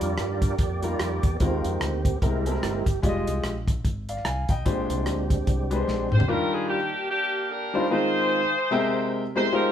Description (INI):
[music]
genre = uptempo gospel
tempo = 148 BPM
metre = 4/4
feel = swing 59% on 8ths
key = Eb major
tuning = A4 = 437 Hz
[part]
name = warm grand piano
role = accompaniment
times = 0.0-9.7 s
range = Bb2 to Ab5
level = -26 LUFS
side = left 2 dB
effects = none
[part]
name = tonewheel organ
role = sustained chords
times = 0.0-6.2 s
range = G3 to D5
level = -30 LUFS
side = right 4 dB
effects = slow rotary speaker, overdrive, chorus vibrato
[part]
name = fingered electric bass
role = bass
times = 0.0-6.3 s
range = F1 to G2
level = -30 LUFS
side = equal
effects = none
[part]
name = warm soul drum kit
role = drums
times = 0.0-6.3 s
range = hi-hat, kick drum, rim click, snare drum, toms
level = -25 LUFS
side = equal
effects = none
[part]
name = warm saxophone section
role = melody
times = 6.1-9.7 s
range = Bb3 to C5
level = -25 LUFS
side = equal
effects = none
[sound]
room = moderate large studio reverb, RT60 1.0 s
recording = band playing live in one room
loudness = -22 LUFS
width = side -9 dB against mid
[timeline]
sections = 0.0-6.3 A section; 6.3-9.7 B section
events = tonewheel organ solo 0.0-6.3; drum fill 5.9-6.3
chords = 0.0 Ebmaj9; 1.4 Ab69/Eb; 2.2 C7b13; 3.0 Fm9; 4.7 Bb13; 6.3 Ebmaj9; 7.9 Ab69/Eb; 8.7 C7b13